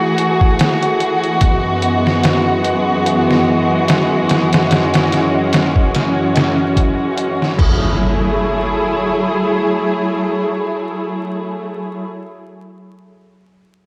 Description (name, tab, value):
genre	trip hop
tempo	73 BPM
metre	4/4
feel	swing 56% on 16ths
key	F# minor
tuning	A4 = 445 Hz
part	muted symphonic string section	sustained chords	0.0-12.0 s	F#2 to G#4	-18 LUFS	equal	none
part	trip hop sampler-style drum kit	drums	0.2-7.8 s	crash cymbal, hi-hat, kick drum, snare drum	-19 LUFS	equal	none
part	impact	sound effects	7.6-12.4 s	none	-23 LUFS	equal	none
room	wet lush hall reverb, RT60 2.8 s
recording	dreamy mix soaked in reverb, vinyl crackle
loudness	-16 LUFS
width	mono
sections	0.0-8.0 A section; 8.0-11.3 B section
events	none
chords	0.0 F#m9; 1.4 Eadd9/F#; 7.6 F#m9